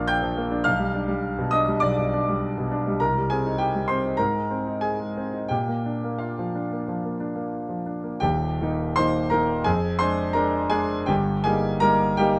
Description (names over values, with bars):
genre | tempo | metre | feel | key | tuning
classical, romantic character piece for solo piano | 78-107 BPM | 4/4 | rubato | Eb major | A4 = 444 Hz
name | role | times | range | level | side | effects
clear concert grand piano | solo | 0.0-12.4 s | Eb1 to G6 | -24 LUFS | equal | none
room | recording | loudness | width
light reverb | close, detailed microphones | -24 LUFS | mono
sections
0.0-8.2 A section; 8.2-12.4 B section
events
none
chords
0.0 Bb; 0.7 G7/B; 3.0 Cm7; 4.2 Ab; 5.5 Bb; 8.2 Eb; 9.7 Ddim/F; 11.1 Eb/G